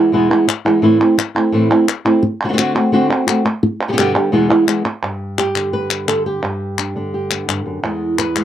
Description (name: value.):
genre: flamenco.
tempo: 172 BPM.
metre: 4/4.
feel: straight.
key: unclear.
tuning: A4 = 440 Hz.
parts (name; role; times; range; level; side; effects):
flamenco guitar; melody; 0.0-8.4 s; E2 to B4; -14 LUFS; right 1 dB; none.
palmas hand claps; percussion; 0.3-8.4 s; none; -20 LUFS; left 1 dB; none.
room: light reverb.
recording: dry, close 1970s-style studio recording.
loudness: -14 LUFS.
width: side -10 dB against mid.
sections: 0.0-5.0 A section; 5.0-8.4 B section.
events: none.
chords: 0.0 E; 0.8 Am; 2.2 D7; 3.6 G; 4.3 E; 5.0 G; 7.8 E.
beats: 0.13 0.48 | 0.83 1.18 1.53 1.88 | 2.23 2.58 2.93 3.28 | 3.63 3.98 4.33 4.68 | 5.03 5.38 5.73 6.08 | 6.43 6.78 7.13 7.48 | 7.83 8.18.